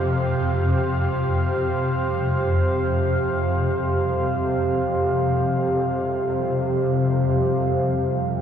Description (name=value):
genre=dark ambient drone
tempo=free time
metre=none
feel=none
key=unclear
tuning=A4 = 440 Hz
part: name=deep dark ambient pad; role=sustained chords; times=0.0-8.4 s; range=G4 to F5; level=-23 LUFS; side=right 1 dB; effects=chorus, built-in reverb
part: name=swarming drone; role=drone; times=0.0-8.4 s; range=F2 to C3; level=-23 LUFS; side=left 1 dB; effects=built-in reverb
part: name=bronze singing bowl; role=texture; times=0.0-7.4 s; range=C5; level=-40 LUFS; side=right 1 dB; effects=none
room=wet cathedral reverb, RT60 5.1 s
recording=worn, warbling old tape, cassette tape, warbly pitch drift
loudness=-20 LUFS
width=side -8 dB against mid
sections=0.0-7.4 A section; 7.4-8.4 B section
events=none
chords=0.0 Fsus2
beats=free time